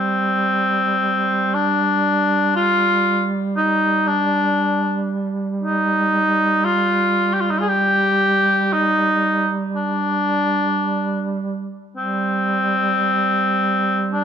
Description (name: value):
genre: caucasian folk, Caucasian lament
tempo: 58 BPM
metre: 3/4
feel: rubato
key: unclear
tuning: A4 = 439 Hz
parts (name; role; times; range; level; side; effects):
- mellow cor anglais; melody; 0.0-14.2 s; C4 to Ab4; -18 LUFS; left 2 dB; none
- warm duduk; drone; 0.0-14.2 s; G3; -22 LUFS; right 4 dB; none
room: moderate scoring stage reverb, RT60 1.8 s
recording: dark, warm production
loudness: -16 LUFS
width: side -8 dB against mid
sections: 0.0-14.2 A section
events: none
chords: none